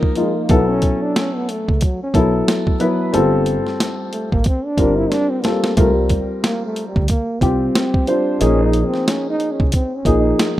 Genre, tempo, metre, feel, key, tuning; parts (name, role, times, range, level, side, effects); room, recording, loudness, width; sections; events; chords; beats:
hip hop, jazz-hop; 91 BPM; 4/4; swing 58% on 16ths; A4 = 437 Hz
dark baby grand piano; accompaniment; 0.0-10.6 s; F3 to C5; -18 LUFS; left 1 dB
boom bap sampler-style drum kit; drums; 0.0-10.6 s; hi-hat, kick drum, snare drum; -19 LUFS; right 1 dB
breathy trombone; melody; 0.2-10.5 s; F#3 to E4; -22 LUFS; right 1 dB
upright bass; bass; 0.5-10.3 s; G1 to D2; -21 LUFS; right 1 dB
light reverb, small room reverb; rough home demo mix; -15 LUFS; side -14 dB against mid
0.0-10.6 A section
trombone solo 0.0-10.6; drum fill 5.1-5.8
0.5 Bsus2; 3.1 Gm9; 5.8 C5; 8.4 Bbsus2
| 0.50 1.16 1.82 2.48 | 3.13 3.79 4.45 5.11 | 5.77 6.43 7.09 7.75 | 8.41 9.07 9.73 10.39